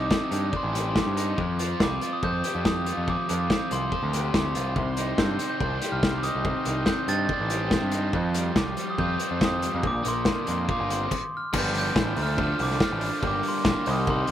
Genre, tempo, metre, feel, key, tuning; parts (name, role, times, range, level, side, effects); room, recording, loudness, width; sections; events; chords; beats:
indie rock; 142 BPM; 4/4; straight; C dorian; A4 = 440 Hz
glockenspiel with soft plastic mallets; melody; 0.0-14.3 s; C6 to A6; -29 LUFS; right 1 dB
overdriven electric guitar; riff; 0.0-14.3 s; G2 to D5; -30 LUFS; equal; slapback echo
growling picked electric bass; bass; 0.0-14.3 s; G1 to G2; -29 LUFS; equal; overdrive
loose indie drum kit; drums; 0.1-14.3 s; crash cymbal, hi-hat, kick drum, snare drum; -27 LUFS; left 1 dB
overdriven combo organ; sustained chords; 4.8-14.3 s; Eb4 to C6; -37 LUFS; right 2 dB
little or no reverb; -23 LUFS; side -11 dB against mid
0.0-11.5 A section; 11.5-14.3 B section
stop 11.1-11.5
0.0 Cmadd9; 1.4 Fsus2; 4.8 Cmadd9; 8.1 Fsus2; 9.8 Bbadd9; 11.5 G7; 12.2 Dm7; 13.2 Gm7
0.12 0.54 0.96 | 1.38 1.81 2.23 2.65 | 3.07 3.50 3.92 4.34 | 4.76 5.19 5.61 6.03 | 6.46 6.88 7.30 7.72 | 8.15 8.57 8.99 9.42 | 9.84 10.27 10.69 11.11 | 11.54 11.96 12.38 12.81 | 13.23 13.65 14.08